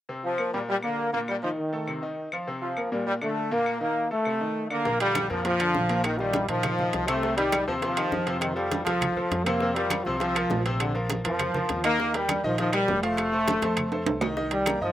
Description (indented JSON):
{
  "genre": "latin, salsa",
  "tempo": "202 BPM",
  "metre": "4/4",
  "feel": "straight",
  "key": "Bb major",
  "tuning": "A4 = 441 Hz",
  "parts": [
    { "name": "bright grand piano", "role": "accompaniment", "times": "0.1-14.9 s", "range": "Bb2 to Eb6", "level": "-30 LUFS", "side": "left 1 dB", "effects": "none" },
    { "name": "brilliant trombone section", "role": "melody", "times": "0.2-14.9 s", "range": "D3 to Bb3", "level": "-26 LUFS", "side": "equal", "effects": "none" },
    { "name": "claves", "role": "percussion", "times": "0.4-14.8 s", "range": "none", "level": "-35 LUFS", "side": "left 3 dB", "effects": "none" },
    { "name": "upright bass", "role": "bass", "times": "4.9-14.9 s", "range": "F1 to Bb2", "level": "-34 LUFS", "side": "right 1 dB", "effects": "none" },
    { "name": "bongos", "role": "percussion", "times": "4.9-14.8 s", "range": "none", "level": "-37 LUFS", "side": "left 5 dB", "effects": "none" },
    { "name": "congas", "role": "percussion", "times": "4.9-14.9 s", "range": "none", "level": "-36 LUFS", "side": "right 1 dB", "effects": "none" },
    { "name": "timbales", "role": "percussion", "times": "5.0-14.8 s", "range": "none", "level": "-31 LUFS", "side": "right 6 dB", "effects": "slapback echo" }
  ],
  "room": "light reverb",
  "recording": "recorded outdoors, with no room sound",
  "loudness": "-24 LUFS",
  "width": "side -12 dB against mid",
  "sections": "0.1-4.9 A section; 4.9-14.4 B section",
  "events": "drum fill 8.7-9.6, 13.6-14.4",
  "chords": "0.1 Bbsus2; 0.7 Bb; 1.3 Eb5/Bb; 1.9 F5; 2.5 Bbsus2; 3.1 Bbmaj7; 3.7 Bbsus4; 4.3 Cm13; 4.9 Bb; 6.0 Ebadd9/Bb; 7.2 Cm; 8.4 F; 9.6 Fsus4; 10.8 Bbsus2; 12.0 Eb; 13.2 F; 14.4 Cm7"
}